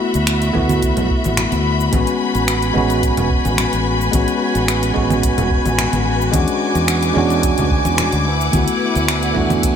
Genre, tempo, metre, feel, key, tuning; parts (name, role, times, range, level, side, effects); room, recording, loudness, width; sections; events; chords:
sunset chillout; 109 BPM; 4/4; straight; A major; A4 = 439 Hz
bell-like tine electric piano; accompaniment; 0.0-9.8 s; G#3 to F#4; -19 LUFS; moving between left 6 dB and right 5 dB; auto-pan, ping-pong delay
bright studio string section; sustained chords; 0.0-9.8 s; E4 to D6; -21 LUFS; left 3 dB
fretless electric bass; bass; 0.1-9.7 s; E1 to E2; -20 LUFS; equal; lush chorus
deep house drum kit; drums; 0.1-9.8 s; congas, finger snaps, hi-hat, shaker; -23 LUFS; right 2 dB; studio reverb
congas; percussion; 0.5-9.5 s; -28 LUFS; left 3 dB
electronic kick drum; drums; 0.6-9.8 s; -21 LUFS; equal; studio reverb
drifting glass-harmonics texture; texture; 2.7-9.8 s; G#5 to G#6; -26 LUFS; right 3 dB; chorus, built-in reverb
moderate plate reverb, RT60 2.9 s; bright 1980s-style digital production; -14 LUFS; side -8 dB against mid
0.0-9.8 A section
0.0 D69; 1.9 Amaj13; 6.3 E13; 8.3 D69